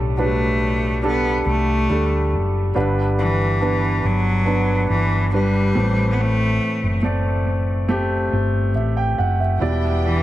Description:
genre	pop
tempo	70 BPM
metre	4/4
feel	straight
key	G major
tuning	A4 = 440 Hz
part	warm grand piano	accompaniment	0.0-10.2 s	G2 to G5	-22 LUFS	right 1 dB	analog delay
part	hollow-body short-scale fingered electric bass	bass	0.0-10.2 s	E1 to D2	-21 LUFS	equal	none
part	clear cello	melody	0.2-10.2 s	E3 to B3	-22 LUFS	left 1 dB	analog delay
part	bright studio string section	sustained chords	9.6-10.2 s	E3 to G5	-29 LUFS	left 2 dB	none
room	light reverb, studio ambience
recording	echo-heavy mix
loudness	-17 LUFS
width	side -14 dB against mid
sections	0.0-10.2 A section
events	none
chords	0.0 Dsus4; 2.8 G; 5.8 Amadd9; 9.6 Em7

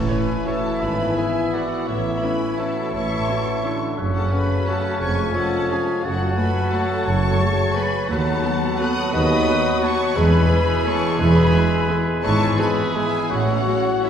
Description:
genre	classical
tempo	173 BPM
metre	3/4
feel	uneven beats, rubato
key	E major from 8.1 s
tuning	A4 = 444 Hz
part	dark symphonic violin section	melody	0.0-14.1 s	E5 to F#6	-29 LUFS	left 2 dB	none
part	clear clarinet	second line	0.0-14.1 s	E4 to F#5	-30 LUFS	left 1 dB	none
part	clear oboe	second line	0.0-14.1 s	B4 to E5	-32 LUFS	equal	none
part	silver concert flute	second line	0.0-14.1 s	E6 to A6	-34 LUFS	left 2 dB	none
part	mellow bassoon	accompaniment	0.0-14.1 s	C#3 to G#3	-29 LUFS	right 1 dB	none
part	dark trombone section	sustained chords	0.0-14.1 s	E3 to C#4	-29 LUFS	right 2 dB	none
part	warm trumpet	stabs	0.0-14.1 s	C#4 to G#4	-28 LUFS	equal	none
part	dark symphonic cello section	bass	0.0-13.6 s	D#2 to A2	-24 LUFS	right 1 dB	none
part	rich symphonic double bass section	bass	0.0-13.6 s	E1 to D#2	-25 LUFS	equal	none
part	warm symphonic violin section	second line	0.1-14.1 s	C#5 to D#6	-32 LUFS	left 2 dB	none
part	warm symphonic viola section	accompaniment	0.1-14.1 s	F#3 to C#5	-32 LUFS	equal	none
part	mellow French horn section	sustained chords	0.1-14.1 s	E4 to B4	-28 LUFS	left 4 dB	none
part	timpani	percussion	10.2-10.6 s	E2	-33 LUFS	left 1 dB	none
room	wet concert hall reverb, RT60 2.4 s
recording	heard from further back in the room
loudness	-18 LUFS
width	side -8 dB against mid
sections	0.0-14.1 A section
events	none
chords	0.0 A; 0.8 E/G#; 1.9 A; 4.0 F#m; 5.0 C#/E#; 6.0 F#m; 8.1 B7/D#; 10.2 E; 12.2 E/G#; 13.3 F#m7/A

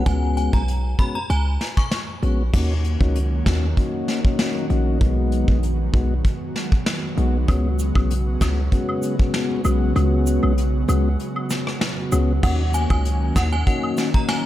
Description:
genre	dancehall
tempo	97 BPM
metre	4/4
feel	straight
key	Eb minor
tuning	A4 = 440 Hz
part	mellow tonewheel organ	accompaniment	0.0-14.5 s	Ab3 to Gb4	-26 LUFS	left 4 dB	slow rotary speaker
part	hard-hitting 808-style bass	bass	0.0-13.6 s	Bb1 to Eb2	-20 LUFS	equal	none
part	synth chime	melody	0.1-1.9, 12.4-14.4 s	Gb5 to Db6	-28 LUFS	equal	ensemble chorus, phaser, diffuse ambient delay
part	vintage brush drum kit	drums	0.1-14.4 s	crash cymbal, hi-hat, kick drum, rim click, snare drum	-22 LUFS	equal	none
part	airy breathy pad	sustained chords	2.5-14.5 s	Db3 to Gb4	-27 LUFS	right 1 dB	chorus, sidechain pumping
part	woodblock and cabasa	percussion	7.5-14.1 s	none	-33 LUFS	right 1 dB	none
room	light reverb, small room ambience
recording	faint mains hum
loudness	-18 LUFS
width	side -14 dB against mid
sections	0.0-2.5 A section; 2.5-12.4 B section; 12.4-14.5 C section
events	kick muted 10.0-12.4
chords	0.0 Db7sus4; 2.5 Ebm7; 5.0 B6; 7.5 Db7sus4; 12.4 Ebm7

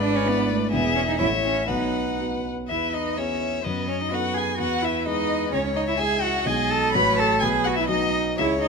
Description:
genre	quick classical-period movement for piano quartet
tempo	126 BPM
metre	2/4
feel	rubato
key	E major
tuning	A4 = 439 Hz
part	rich violin	melody	0.0-8.7 s	B4 to B5	-26 LUFS	left 6 dB	none
part	rich violin	second line	0.0-8.7 s	G#4 to E5	-29 LUFS	left 4 dB	none
part	warm cello	second line	0.0-8.7 s	A3 to B4	-26 LUFS	right 8 dB	none
part	dark concert grand piano	accompaniment	0.0-8.7 s	E1 to C#5	-27 LUFS	left 1 dB	none
room	moderate scoring stage reverb, RT60 1.6 s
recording	close, detailed microphones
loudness	-21 LUFS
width	side -4 dB against mid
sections	0.0-2.7 A section; 2.7-8.7 B section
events	none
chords	0.0 E7/G#; 0.7 E; 1.2 A; 1.7 B; 2.7 E; 3.6 B7/F#; 4.6 E; 5.5 C#m; 6.5 G#m/B; 6.9 F#m/A; 7.4 B

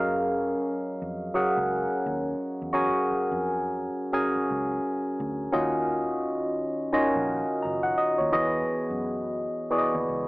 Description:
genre	R&B, neo-soul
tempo	86 BPM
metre	4/4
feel	swing 59% on 16ths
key	F# major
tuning	A4 = 440 Hz
part	barky tine electric piano	accompaniment	0.0-10.3 s	D#3 to A#5	-25 LUFS	equal	phaser
part	vintage muted fingered electric bass	bass	0.0-10.3 s	F#1 to F#2	-39 LUFS	equal	none
room	light reverb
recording	small speaker sound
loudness	-24 LUFS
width	side -21 dB against mid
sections	0.0-10.3 A section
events	none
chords	0.0 F#maj7; 5.5 D#m7; 8.3 Emaj9

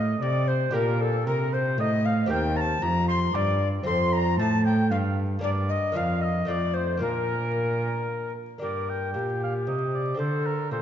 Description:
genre	classical, baroque-style sonata movement with continuo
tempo	115 BPM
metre	3/4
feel	straight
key	Bb major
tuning	A4 = 440 Hz
part	tenor recorder	melody	0.0-10.8 s	G4 to C6	-29 LUFS	left 5 dB	none
part	warm oboe	second line	0.0-10.8 s	A4 to D6	-32 LUFS	right 5 dB	none
part	lute	accompaniment	0.0-10.8 s	Eb2 to Bb4	-32 LUFS	left 2 dB	none
part	dark cello	bass	0.0-10.8 s	Eb2 to D3	-26 LUFS	right 1 dB	none
room	moderate concert hall reverb, RT60 2.0 s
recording	dark, warm production, vinyl crackle, nothing above 7.6 kHz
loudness	-23 LUFS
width	side -10 dB against mid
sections	0.0-8.6 A section; 8.6-10.8 A section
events	none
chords	0.0 Gm; 2.3 Cm7/Eb; 3.9 F; 5.4 Gm; 6.0 Bb/F; 6.5 F7; 7.0 Bb; 8.6 Gm; 10.2 D7(no3)

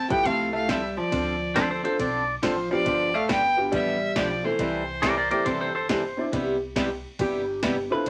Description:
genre	country, western swing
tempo	138 BPM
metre	4/4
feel	swing 66% on 8ths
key	C major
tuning	A4 = 440 Hz
part	clear fiddle	melody	0.0-5.9 s	C5 to G5	-29 LUFS	equal	none
part	archtop guitar, miked and amplified	second line	0.0-8.1 s	E3 to B4	-32 LUFS	equal	none
part	upright bass	bass	0.0-8.1 s	G1 to D2	-42 LUFS	equal	none
part	dark upright piano	accompaniment	0.1-8.0 s	A3 to D5	-32 LUFS	equal	none
part	punchy analog drum machine	drums	0.1-8.1 s	hi-hat, kick drum, ride cymbal, snare drum	-34 LUFS	equal	overdrive
part	picked swing-style acoustic guitar	accompaniment	0.3-8.1 s	C3 to A4	-31 LUFS	equal	none
part	pedal steel guitar	second line	1.6-2.3, 5.0-6.2 s	A4 to D5	-28 LUFS	equal	none
room	wet small room reverb, RT60 0.5 s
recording	vinyl crackle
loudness	-25 LUFS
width	mono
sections	0.0-6.3 A section; 6.3-8.1 B section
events	hollow-body jazz guitar solo 6.3-8.1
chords	0.0 Fmaj9; 1.1 Dm7; 2.9 G7; 4.6 C6; 6.3 Cmaj7

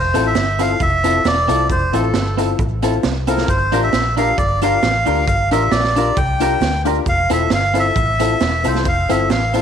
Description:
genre	ska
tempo	134 BPM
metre	4/4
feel	swing 54% on 8ths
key	F major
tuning	A4 = 438 Hz
part	melodica	melody	0.0-9.6 s	A4 to G5	-18 LUFS	equal	slapback echo
part	vintage muted fingered electric bass	bass	0.0-9.6 s	E1 to D2	-21 LUFS	equal	none
part	clean electric guitar	accompaniment	0.1-9.6 s	C4 to Bb4	-24 LUFS	right 9 dB	none
part	warm upright piano	stabs	0.1-9.6 s	C4 to Bb4	-22 LUFS	left 12 dB	none
part	raw garage drum kit	drums	0.1-9.6 s	hi-hat, kick drum, snare drum	-22 LUFS	right 3 dB	slapback echo
part	cabasa	percussion	0.1-9.6 s	none	-41 LUFS	left 10 dB	none
room	light reverb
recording	1960s-style stereo with parts hard left and right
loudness	-14 LUFS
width	side -8 dB against mid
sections	0.0-9.6 A section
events	none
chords	0.0 Fmaj7; 3.5 Gm7; 7.1 Fmaj7

